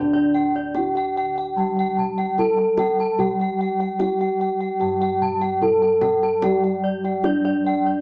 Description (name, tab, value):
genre	Javanese gamelan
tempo	74 BPM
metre	4/4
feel	straight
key	unclear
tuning	A4 = 438 Hz
part	gamelan-type bronze metallophone	melody	0.0-8.0 s	D4 to A4+25c	-21 LUFS	equal	none
part	gamelan-type bronze metallophone	accompaniment	0.0-8.0 s	D3 to G3-35c	-27 LUFS	equal	none
part	gamelan-type bossed gongs	arpeggios	0.0-8.0 s	D5 to A5+25c	-32 LUFS	equal	none
part	gamelan-type bronze metallophone	arpeggios	0.0-8.0 s	D5 to A5+25c	-24 LUFS	equal	none
part	gamelan-type bossed gongs	bass	0.0-8.0 s	D2 to G4-35c	-28 LUFS	equal	none
part	kendang	percussion	0.1-7.5 s	none	-32 LUFS	equal	none
room	moderate studio reverb, RT60 0.5 s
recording	band playing live in one room, small speaker sound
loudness	-18 LUFS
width	side -37 dB against mid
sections	0.0-8.0 A section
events	none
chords	none